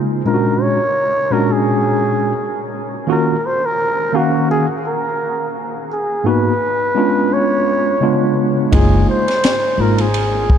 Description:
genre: hip hop, jazz-hop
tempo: 85 BPM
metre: 4/4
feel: swing 58% on 16ths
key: Bb minor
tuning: A4 = 440 Hz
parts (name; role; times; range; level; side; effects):
- barky tine electric piano; accompaniment; 0.0-10.1 s; Ab2 to F5; -17 LUFS; equal; medium stereo tremolo
- trumpet with bucket mute; melody; 0.3-10.6 s; Gb4 to Db5; -18 LUFS; equal; tape echo
- upright bass; bass; 8.7-10.6 s; Gb1 to Ab1; -16 LUFS; equal; none
- open jazz drum kit; drums; 8.7-10.6 s; hi-hat, kick drum, ride cymbal, snare drum; -17 LUFS; equal; vintage 12-bit sampler grit
room: moderate huge ambient reverb, RT60 8.4 s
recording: dreamy mix soaked in reverb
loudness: -14 LUFS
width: side -8 dB against mid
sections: 0.0-10.6 A section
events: none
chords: 0.3 Bb7alt; 3.1 Ebm9; 5.9 Abm9; 7.3 Db7b9; 8.7 Gbmaj13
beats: | 0.26 0.96 1.67 2.38 | 3.08 3.79 4.49 5.20 | 5.91 6.61 7.32 8.02 | 8.73 9.44 10.14

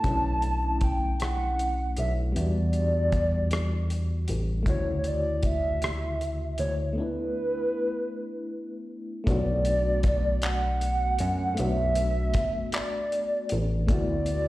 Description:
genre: slow six-eight R&B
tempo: 52 BPM (dotted quarters)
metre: 6/8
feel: straight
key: B minor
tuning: A4 = 439 Hz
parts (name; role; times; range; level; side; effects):
- hollow clarinet-like synth lead; melody; 0.0-14.5 s; B4 to A5; -29 LUFS; right 1 dB; chorus, slapback echo
- FM electric piano with tremolo; accompaniment; 0.0-14.5 s; C#3 to F#4; -34 LUFS; left 2 dB; slapback echo
- cloth-damped thuddy drum kit; drums; 0.0-14.4 s; handclaps, hi-hat, kick drum, rim click; -29 LUFS; equal; none
- bell-like tine electric piano; bass; 0.1-14.5 s; A1 to F#2; -27 LUFS; equal; fast stereo tremolo
room: light reverb, small room ambience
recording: live gig heard through the venue's PA, recital hall reverb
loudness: -24 LUFS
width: side -17 dB against mid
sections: 0.0-9.3 A section; 9.3-14.5 B section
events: break 7.0-9.3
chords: 0.0 Bm11; 2.3 Em9; 4.7 Dmaj9; 7.0 Asus24; 9.3 Bm7; 13.9 D69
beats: | 0.04 1.20 | 2.35 3.50 | 4.66 5.81 | 6.96 8.12 | 9.27 10.43 | 11.58 12.73 | 13.89

